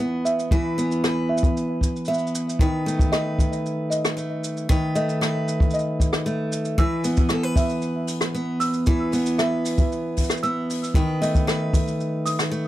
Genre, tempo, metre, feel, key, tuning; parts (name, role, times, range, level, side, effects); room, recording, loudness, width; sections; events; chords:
folktronica; 115 BPM; 4/4; straight; A4 = 443 Hz
picked steel-string acoustic guitar; arpeggios; 0.0-12.7 s; D#3 to B4; -24 LUFS; equal; tape echo
folk marimba with soft mallets; second line; 0.3-12.5 s; D#5 to E6; -29 LUFS; right 1 dB; tape echo
jazz brush drum kit; drums; 0.3-12.6 s; hi-hat, rim click, shaker; -29 LUFS; equal
kick drum; drums; 0.5-11.8 s; -20 LUFS; equal
little or no reverb; -20 LUFS; side -14 dB against mid
0.0-12.7 A section
0.0 E5; 2.6 B7/D#; 6.8 E5; 11.0 B7/D#